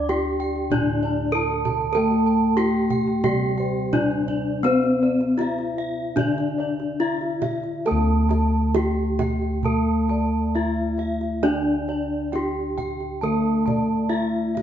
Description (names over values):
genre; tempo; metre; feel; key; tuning
Javanese gamelan; 67-97 BPM; 4/4; straight; D slendro; A4 = 440 Hz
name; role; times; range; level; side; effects
gamelan-type bronze metallophone; melody; 0.0-14.6 s; C4-40c to A4+20c; -25 LUFS; left 1 dB; none
gamelan-type bronze metallophone; accompaniment; 0.0-14.6 s; D3 to D4; -26 LUFS; left 1 dB; none
gamelan-type bossed gongs; arpeggios; 0.0-14.6 s; C5-40c to A5+20c; -35 LUFS; left 4 dB; none
gamelan-type bronze metallophone; arpeggios; 0.0-14.6 s; C5-40c to A5+20c; -30 LUFS; right 6 dB; none
gamelan-type bossed gongs; bass; 0.0-14.6 s; D2 to D5; -27 LUFS; equal; none
kendang; percussion; 0.1-14.6 s; none; -30 LUFS; right 4 dB; none
room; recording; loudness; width
wet large studio reverb, RT60 1.5 s; band playing live in one room, nothing above 7.6 kHz; -20 LUFS; side -10 dB against mid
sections
0.0-7.9 A section; 7.9-14.6 B section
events
none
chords
none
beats
0.09 0.71 1.33 | 1.95 2.58 3.24 3.93 | 4.64 5.39 6.18 7.00 | 7.87 8.76 9.65 10.55 | 11.44 12.33 13.22 14.12